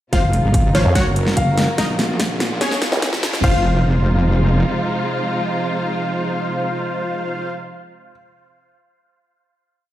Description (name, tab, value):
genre	heavy wobble dubstep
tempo	145 BPM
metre	4/4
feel	half-time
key	F phrygian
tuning	A4 = 440 Hz
part	warm grand piano	melody	0.1-8.1 s	Db5 to F5	-25 LUFS	left 2 dB	dub echo
part	warm symphonic string section	sustained chords	0.1-7.5 s	C3 to Bb4	-24 LUFS	right 1 dB	vintage 12-bit sampler grit, sidechain pumping
part	supersaw stab	stabs	0.1-7.5 s	Db4 to Gb5	-25 LUFS	left 1 dB	dub echo
part	wobble bass	bass	0.1-4.6 s	F1 to Bb1	-18 LUFS	equal	chorus, overdrive
part	dubstep drum kit	drums	0.1-3.5 s	crash cymbal, hi-hat, snare drum	-22 LUFS	equal	none
part	electronic kick drum	drums	0.1-3.5 s	none	-20 LUFS	equal	none
part	riser	sound effects	1.5-3.4 s	none	-30 LUFS	left 1 dB	none
part	formant-sweep wobble bass	bass	0.9-3.1 s	Db2 to F2	-16 LUFS	equal	chorus, overdrive
room	light reverb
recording	played on a big sound system in a bare room, stone room reverb, high-pass filter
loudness	-16 LUFS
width	side -13 dB against mid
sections	0.1-3.4 build; 3.4-6.7 final chord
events	build-up 0.1-3.4; drum fill 0.1-3.4; filter sweep 0.1-3.4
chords	0.1 Fm7; 1.0 Gb; 1.8 Ebmadd9; 2.6 Dbadd9; 3.4 Fm7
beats	| 0.13 0.54 0.95 1.37 | 1.78 2.20 2.61 3.02 | 3.44 3.85 4.26 4.68 | 5.09 5.51 5.92 6.33